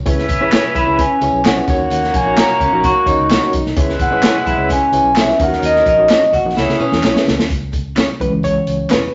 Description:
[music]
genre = uptempo 1960s-style soul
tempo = 129 BPM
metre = 4/4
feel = straight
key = C# dorian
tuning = A4 = 439 Hz
[part]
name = vintage muted fingered electric bass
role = bass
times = 0.0-9.1 s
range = E1 to C#3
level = -27 LUFS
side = equal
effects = none
[part]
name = mellow horn section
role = second line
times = 0.1-7.3 s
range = E3 to E5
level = -23 LUFS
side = equal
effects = tube saturation
[part]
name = overdriven reed electric piano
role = accompaniment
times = 0.1-9.1 s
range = E3 to D#5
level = -23 LUFS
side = equal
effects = fast tremolo
[part]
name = swinging big-band drum kit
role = drums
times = 0.1-9.0 s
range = hi-hat, kick drum, snare drum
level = -20 LUFS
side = equal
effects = none
[part]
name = congas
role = percussion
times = 0.1-9.0 s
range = none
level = -35 LUFS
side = equal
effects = none
[part]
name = tambourine and handclaps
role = percussion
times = 0.1-9.0 s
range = none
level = -32 LUFS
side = equal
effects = none
[part]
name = electric guitar through a small old amp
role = riff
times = 0.5-7.5 s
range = C#4 to G#4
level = -24 LUFS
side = equal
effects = none
[part]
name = electric guitar through a small old amp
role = stabs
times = 0.5-9.0 s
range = A#3 to C#5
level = -25 LUFS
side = equal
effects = none
[part]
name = vibraphone with soft mallets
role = melody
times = 0.8-7.0 s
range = C#5 to C#6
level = -17 LUFS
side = equal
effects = none
[sound]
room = wet studio reverb, RT60 0.7 s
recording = nothing above 7.6 kHz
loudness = -15 LUFS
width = mono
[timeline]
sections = 0.0-7.5 A section; 7.5-9.1 B section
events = drum fill 6.6-7.5; reed electric piano solo 7.5-9.1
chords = 0.1 C#m7; 1.7 D#m7; 3.8 C#m7; 5.4 D#m7; 6.6 C#m7; 7.5 C#m

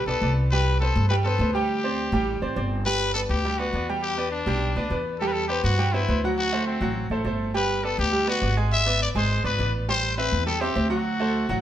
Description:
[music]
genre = latin, salsa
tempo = 205 BPM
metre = 4/4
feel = straight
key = G major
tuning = A4 = 441 Hz
[part]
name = growling trumpet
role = melody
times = 0.0-11.6 s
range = C4 to E5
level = -26 LUFS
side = left 3 dB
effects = none
[part]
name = bright baby grand piano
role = accompaniment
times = 0.0-11.6 s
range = F#3 to Ab5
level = -27 LUFS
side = right 2 dB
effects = none
[part]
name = upright bass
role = bass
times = 0.0-11.6 s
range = G1 to G2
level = -25 LUFS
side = equal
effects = none
[sound]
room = moderate stone room reverb, RT60 1.2 s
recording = band playing live in one room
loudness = -22 LUFS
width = side -11 dB against mid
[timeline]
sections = 0.0-2.9 A section; 2.9-11.6 A section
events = none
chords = 0.0 E7(no3) (rootless); 0.5 C5; 1.7 D7sus4; 2.9 Gmaj7; 4.0 Em7; 5.2 Cmaj7/E; 6.4 D7; 7.5 Gmaj7; 8.7 E7/G#; 9.9 Am7; 11.1 D7

